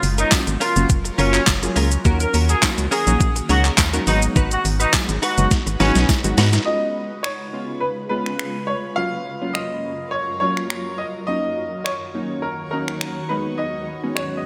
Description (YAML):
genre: dance-pop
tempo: 104 BPM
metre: 4/4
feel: straight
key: Eb minor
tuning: A4 = 440 Hz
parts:
  - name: warm analog keys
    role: accompaniment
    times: 0.0-14.5 s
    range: Gb3 to Ab4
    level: -29 LUFS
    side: equal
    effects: chorus, sidechain pumping
  - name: shimmering ambient pad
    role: sustained chords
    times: 0.0-14.5 s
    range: Eb2 to Db5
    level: -34 LUFS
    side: equal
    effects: chorus, built-in reverb, phaser, sidechain pumping
  - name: direct-recorded clean electric guitar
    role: riff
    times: 0.0-6.6 s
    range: Db4 to Cb5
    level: -28 LUFS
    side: equal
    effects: analog chorus
  - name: organ-like FM bass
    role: bass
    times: 0.0-6.6 s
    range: F1 to Ab2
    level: -22 LUFS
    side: equal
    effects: sidechain pumping
  - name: clean 12-bit digital drum machine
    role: drums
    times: 0.0-14.3 s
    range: finger snaps, handclaps, hi-hat, kick drum, shaker, snare drum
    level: -22 LUFS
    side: equal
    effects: gated reverb
  - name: warm horn section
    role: melody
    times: 0.2-6.1 s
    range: Db4 to Bb4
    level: -25 LUFS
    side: equal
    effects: sidechain pumping, digital delay
  - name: tambourine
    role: percussion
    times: 0.3-6.2 s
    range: none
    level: -35 LUFS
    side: equal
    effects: none
  - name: warm baby grand piano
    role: melody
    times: 6.7-14.5 s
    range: Bb4 to F5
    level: -27 LUFS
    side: equal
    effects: subtle chorus
room: light reverb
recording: bright 1980s-style digital production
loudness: -20 LUFS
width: mono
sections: 0.0-6.7 A section; 6.7-14.5 B section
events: drop 0.0-6.7; drum fill 5.5-6.7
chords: 0.0 Gbmaj7; 2.1 Ebm7; 4.1 Abm7; 6.7 Db7; 9.0 Gbmaj7; 11.3 Ebm7; 13.3 Abm7